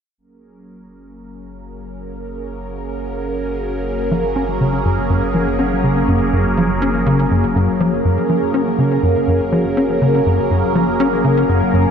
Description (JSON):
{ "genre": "ambient, sequencer-driven space music", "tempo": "122 BPM", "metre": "4/4", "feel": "straight", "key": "Gb major", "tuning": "A4 = 440 Hz", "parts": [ { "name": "phased analog pad", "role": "sustained chords", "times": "0.2-11.9 s", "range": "Gb3 to Bb4", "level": "-18 LUFS", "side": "right 1 dB", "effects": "phaser, chorus" }, { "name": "warm sub bass", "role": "bass", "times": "0.2-11.9 s", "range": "Gb1", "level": "-29 LUFS", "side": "equal", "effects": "none" }, { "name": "tight sequencer bass", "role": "riff", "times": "4.1-11.9 s", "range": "Gb2 to Db4", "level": "-17 LUFS", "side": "left 1 dB", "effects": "ensemble chorus, ping-pong delay" } ], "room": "wet huge ambient reverb, RT60 7.6 s", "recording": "none", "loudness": "-14 LUFS", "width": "side -7 dB against mid", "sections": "0.2-8.0 A section; 8.0-11.9 B section", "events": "fade-in on analog synth pad 0.2-8.0; fade-in on sub bass 0.2-8.0", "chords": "0.2 Gbadd9", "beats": "| 0.18 0.67 1.16 1.66 | 2.15 2.64 3.13 3.62 | 4.11 4.61 5.10 5.59 | 6.08 6.57 7.07 7.56 | 8.05 8.54 9.03 9.52 | 10.02 10.51 11.00 11.49" }